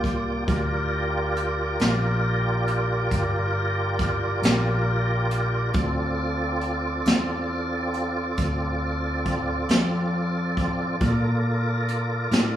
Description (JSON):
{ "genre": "slow blues", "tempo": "46 BPM (dotted quarters)", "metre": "12/8", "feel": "straight", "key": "D minor", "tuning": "A4 = 439 Hz", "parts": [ { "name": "tonewheel organ", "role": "sustained chords", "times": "0.0-12.6 s", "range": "Bb3 to D5", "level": "-26 LUFS", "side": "right 1 dB", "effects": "chorus vibrato, slow rotary speaker" }, { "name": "fingered electric bass", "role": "bass", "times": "0.0-12.6 s", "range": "G1 to Bb2", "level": "-26 LUFS", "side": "equal", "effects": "none" }, { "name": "jazz brush drum kit", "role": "drums", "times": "0.0-12.5 s", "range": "hi-hat, kick drum, snare drum", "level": "-25 LUFS", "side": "equal", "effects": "none" } ], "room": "wet large studio reverb, RT60 0.9 s", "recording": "band playing live in one room, small room reverb", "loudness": "-22 LUFS", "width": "side -11 dB against mid", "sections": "0.0-12.6 A section", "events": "none", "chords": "0.0 Gm7; 5.7 Dm7; 11.0 Bbmaj7", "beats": "| 0.48 1.80 3.12 4.43 | 5.75 7.07 8.38 9.69 | 11.01 12.32" }